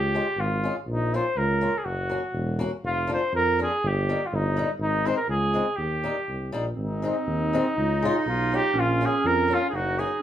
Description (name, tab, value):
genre	alpine folk, alpine dance band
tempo	122 BPM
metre	2/4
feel	swing 54% on 8ths, rubato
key	unclear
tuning	A4 = 440 Hz
part	clear flugelhorn	melody	0.0-10.2 s	Eb4 to C5	-25 LUFS	right 1 dB	none
part	mellow tuba	bass	0.0-10.0 s	Fb1 to F2	-28 LUFS	equal	none
part	fingerpicked swing-style acoustic guitar	accompaniment	0.1-10.1 s	G3 to Gb4	-29 LUFS	left 3 dB	none
part	warm clarinet	second line	6.8-10.2 s	C4 to Eb4	-29 LUFS	right 4 dB	none
room	wet studio ambience, RT60 0.5 s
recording	band playing live in one room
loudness	-22 LUFS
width	side -10 dB against mid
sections	0.0-10.2 A section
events	none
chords	0.0 Db; 0.9 Bbm; 1.8 Gb; 2.8 Bb/F; 3.8 Eb/G; 4.8 Ab; 5.8 Eb; 6.8 Ab; 7.8 Db; 8.7 Bbm